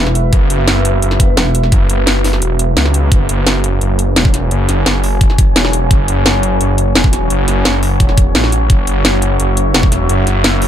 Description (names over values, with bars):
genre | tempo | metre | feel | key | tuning
dark technical drum and bass | 172 BPM | 4/4 | straight | unclear | A4 = 444 Hz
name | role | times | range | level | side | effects
deep dark ambient pad | sustained chords | 0.0-10.7 s | F#4 to G#5 | -19 LUFS | equal | chorus, built-in reverb, sidechain pumping
metallic wobble bass | bass | 0.0-1.7 s | E1 | -14 LUFS | equal | chorus, tube saturation
drum and bass drum kit | drums | 0.1-10.7 s | hi-hat, snare drum | -15 LUFS | equal | none
wide detuned saw bass | bass | 0.3-10.7 s | E1 to C#2 | -14 LUFS | equal | chorus, sidechain pumping
electronic kick drum | drums | 0.3-9.9 s | none | -11 LUFS | equal | overdrive
room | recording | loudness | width
digital ambience | none | -10 LUFS | side -10 dB against mid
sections
0.0-3.1 A section; 3.1-10.7 A section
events
drop 0.0-3.1, 3.1-10.7; kick drops out 2.4-3.1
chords
0.0 F#5